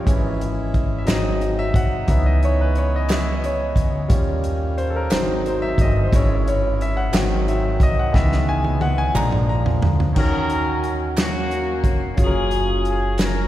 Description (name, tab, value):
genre	slow gospel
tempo	60 BPM (dotted quarters)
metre	6/8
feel	straight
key	C# minor, Eb minor from 10.2 s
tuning	A4 = 440 Hz
part	bright concert grand piano	accompaniment	0.0-13.5 s	D#3 to A#5	-24 LUFS	left 1 dB	none
part	accordion	sustained chords	0.0-10.2 s	B2 to E4	-31 LUFS	equal	none
part	upright bass	bass	0.0-13.5 s	F1 to D#2	-22 LUFS	equal	none
part	warm soul drum kit	drums	0.1-13.3 s	crash cymbal, hi-hat, kick drum, snare drum, toms	-22 LUFS	equal	none
part	group handclap	percussion	1.1-13.5 s	none	-36 LUFS	right 4 dB	none
part	mellow horn section	melody	10.2-13.5 s	Bb3 to Bb4	-23 LUFS	left 1 dB	none
room	wet concert hall reverb, RT60 2.5 s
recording	recorded in a church or concert hall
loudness	-17 LUFS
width	side -13 dB against mid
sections	0.0-10.2 A section; 10.2-13.5 B section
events	grand piano solo 0.0-10.2; drum fill 8.1-10.2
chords	0.1 C#m/G#; 1.1 G#7; 2.1 C#m7; 4.1 D#7; 5.1 G#7; 6.1 C#m/G#; 7.1 G#7; 8.1 C#m7; 9.1 A#7; 10.2 Ebm7; 12.2 Gbmaj7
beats	| 0.07 1.08 | 2.09 3.10 | 4.10 5.11 | 6.12 7.13 | 8.14 9.15 | 10.16 11.17 | 12.17 13.18